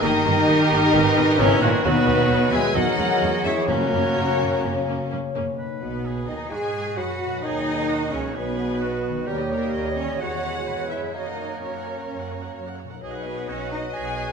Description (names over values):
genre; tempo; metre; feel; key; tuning
classical, dramatic, fast romantic movement for symphony orchestra; 129 BPM; 4/4; straight; B major; A4 = 436 Hz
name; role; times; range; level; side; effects
rich symphonic violin section; melody; 0.0-14.3 s; A#4 to G#5; -29 LUFS; left 4 dB; none
clear oboe; second line; 0.0-14.3 s; F#4 to E5; -30 LUFS; right 2 dB; none
mellow clarinet; second line; 0.0-14.3 s; A#4 to G#5; -34 LUFS; equal; none
mellow hollow flute section; second line; 0.0-14.3 s; C#4 to D#5; -31 LUFS; right 2 dB; none
rich symphonic violin section; second line; 0.0-14.3 s; A#3 to G#5; -33 LUFS; left 4 dB; none
mellow bassoon; accompaniment; 0.0-14.3 s; B2 to A#3; -31 LUFS; right 2 dB; none
rich studio viola section; accompaniment; 0.0-14.3 s; D#3 to F#5; -33 LUFS; right 3 dB; none
mellow French horn section; sustained chords; 0.0-14.3 s; A#3 to D#5; -28 LUFS; left 3 dB; none
concert harp; arpeggios; 0.0-14.3 s; F#2 to C#5; -30 LUFS; left 7 dB; none
rich studio double bass section; bass; 0.0-14.3 s; G1 to G#2; -30 LUFS; right 5 dB; none
rich symphonic cello section; bass; 0.0-14.3 s; A#2 to G#4; -28 LUFS; right 3 dB; none
timpani; percussion; 3.7-4.4 s; F#2; -32 LUFS; equal; none
room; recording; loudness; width
wet recital hall reverb, RT60 1.6 s; none; -20 LUFS; side -6 dB against mid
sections
0.0-5.6 A section; 5.6-14.3 B section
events
none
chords
0.0 D#/G; 0.9 G#m; 1.8 B/D#; 2.8 C#m/E; 3.7 F#; 5.6 B; 7.4 F#; 8.4 B; 9.3 D#7; 10.2 E6; 11.1 F#; 13.0 B